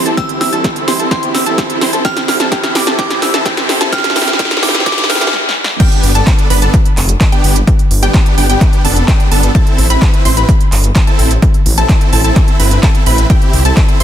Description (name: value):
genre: EDM, festival progressive house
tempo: 128 BPM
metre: 4/4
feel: straight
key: unclear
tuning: A4 = 439 Hz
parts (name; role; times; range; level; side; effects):
- dark concert grand piano; accompaniment; 0.0-5.3 s; E3 to E4; -22 LUFS; right 6 dB; sidechain pumping
- wide unison pluck; arpeggios; 0.0-14.0 s; G5 to C6; -21 LUFS; moving between left 4 dB and right 3 dB; auto-pan, sidechain pumping, dub echo
- supersaw chords; riff; 0.0-14.0 s; B3 to C5; -18 LUFS; right 1 dB; sidechain pumping, dub echo
- detuned saw bass; bass; 0.0-14.0 s; F1 to D2; -14 LUFS; equal; tube saturation, sidechain pumping, high-pass filter
- riser; sound effects; 0.3-5.3 s; none; -21 LUFS; left 1 dB; none
- big-room dance drum kit; drums; 0.1-14.0 s; crash cymbal, handclaps, hi-hat, snare drum; -17 LUFS; right 1 dB; overdrive
- glassy synth bell; melody; 0.2-5.3 s; C6 to F6; -20 LUFS; right 1 dB; chorus, dub echo
- electronic kick drum; drums; 0.2-13.9 s; none; -11 LUFS; equal; overdrive
room: light reverb, digital ambience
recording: dense, heavily limited modern master, high-pass filter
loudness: -9 LUFS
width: side -10 dB against mid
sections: 0.0-5.8 A section; 5.8-14.0 B section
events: build-up 0.0-5.8; drum fill 0.0-5.3, 5.3-5.8; filter sweep on supersaw synth 0.0-5.8; filter sweep on synth pluck 0.0-5.8; filter sweep 0.0-5.8; riser 0.3-5.3; stop 5.3-5.8; drop 5.8-14.0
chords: 0.0 C; 2.0 Dm; 5.8 G; 9.6 Am; 13.3 C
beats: | 0.17 0.64 1.11 1.58 | 2.05 2.52 2.99 3.46 | 3.92 4.39 4.86 5.33 | 5.80 6.27 6.74 7.21 | 7.67 8.14 8.61 9.08 | 9.55 10.02 10.49 10.96 | 11.43 11.89 12.36 12.83 | 13.30 13.77